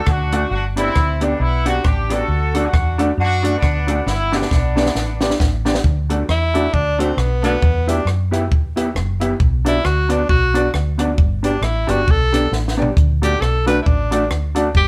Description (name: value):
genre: ska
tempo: 135 BPM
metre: 4/4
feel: swing 58% on 8ths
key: D major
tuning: A4 = 440 Hz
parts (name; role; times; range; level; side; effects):
- clear horn section; melody; 0.0-5.2 s; B3 to A4; -24 LUFS; equal; none
- fingered electric bass; bass; 0.1-14.9 s; F#1 to F#2; -22 LUFS; equal; none
- compact cocktail drum kit; drums; 0.1-14.9 s; hi-hat, kick drum, rim click, snare drum, toms; -21 LUFS; equal; none
- mellow electric guitar; accompaniment; 0.3-14.7 s; A3 to G4; -27 LUFS; equal; dub echo
- warm upright piano; stabs; 0.3-14.7 s; D4 to E5; -25 LUFS; equal; none
- breathy tenor saxophone; melody; 6.3-14.9 s; B3 to B4; -22 LUFS; equal; none
room: light reverb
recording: band playing live in one room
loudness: -18 LUFS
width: mono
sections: 0.0-5.8 A section; 5.8-14.9 B section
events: drum fill 4.1-5.8, 12.5-13.0; tenor saxophone solo 5.8-14.9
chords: 0.0 D; 0.5 G; 2.3 D; 4.1 G; 5.8 D; 7.6 Em; 9.4 Bm; 11.2 G; 13.0 D